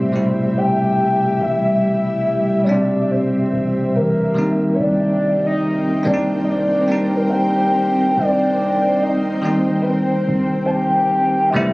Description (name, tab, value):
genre	R&B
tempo	71 BPM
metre	4/4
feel	swing 58% on 16ths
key	unclear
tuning	A4 = 440 Hz
part	soft octave-layered synth lead	melody	0.0-11.7 s	Bb4 to A5	-19 LUFS	equal	chorus, digital delay
part	bell-like tine electric piano	accompaniment	0.0-11.7 s	B2 to E4	-19 LUFS	equal	fast stereo tremolo
part	ethereal airy pad	sustained chords	0.0-11.7 s	G3 to G5	-23 LUFS	equal	ensemble chorus, built-in reverb
part	warm 808-style bass	bass	0.0-11.7 s	G1 to E3	-29 LUFS	equal	none
room	moderate plate reverb, RT60 3.2 s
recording	recorded on a phone in the room, studio ambience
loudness	-15 LUFS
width	side -22 dB against mid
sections	0.0-11.7 A section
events	none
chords	0.0 Am9; 4.4 Cm9